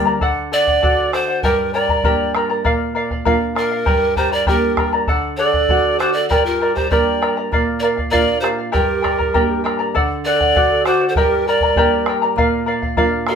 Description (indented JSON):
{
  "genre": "andean folk, Andean ensemble",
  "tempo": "99 BPM",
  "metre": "2/4",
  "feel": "straight",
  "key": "G minor",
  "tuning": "A4 = 440 Hz",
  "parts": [
    { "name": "charango", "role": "accompaniment", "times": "0.0-13.4 s", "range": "G4 to Bb5", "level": "-18 LUFS", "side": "left 2 dB", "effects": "none" },
    { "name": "nylon-string guitar", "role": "accompaniment", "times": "0.0-13.4 s", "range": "G2 to G4", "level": "-24 LUFS", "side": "right 3 dB", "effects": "none" },
    { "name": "bombo", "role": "percussion", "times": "0.2-13.4 s", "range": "none", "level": "-22 LUFS", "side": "right 1 dB", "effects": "none" },
    { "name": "breathy bright pan flute", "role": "melody", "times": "0.5-13.4 s", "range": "Bb4 to D5", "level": "-18 LUFS", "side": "right 1 dB", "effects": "none" },
    { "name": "bright reedy polished pan flute", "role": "second line", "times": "4.2-13.4 s", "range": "F4 to Bb4", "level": "-22 LUFS", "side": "right 5 dB", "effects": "none" }
  ],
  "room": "wet studio reverb, RT60 0.5 s",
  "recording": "band playing live in one room",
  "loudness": "-14 LUFS",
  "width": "side -7 dB against mid",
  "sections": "0.2-9.9 A section; 9.9-13.4 A section",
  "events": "none",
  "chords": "0.2 D; 1.4 Gm; 2.7 Bb; 3.9 Gm; 5.1 D; 6.3 Gm; 7.5 Bb; 8.7 Gm; 9.9 D; 11.2 Gm; 12.4 Bb"
}